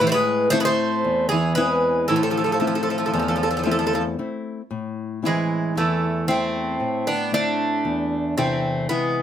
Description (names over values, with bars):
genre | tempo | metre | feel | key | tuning
greek folk, Greek bouzouki band | 115 BPM (eighths) | 9/8 | straight | A harmonic minor | A4 = 440 Hz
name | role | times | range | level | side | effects
Greek bouzouki | melody | 0.0-9.2 s | G#3 to C5 | -22 LUFS | right 2 dB | none
Greek bouzouki | second line | 0.0-9.2 s | E3 to B3 | -25 LUFS | right 2 dB | none
nylon-string guitar | accompaniment | 0.0-9.2 s | E2 to E4 | -25 LUFS | left 5 dB | none
room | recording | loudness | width
moderate studio reverb, RT60 0.6 s | none | -20 LUFS | side -10 dB against mid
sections
0.0-4.7 A section; 4.7-9.2 B section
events
none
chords
0.0 Am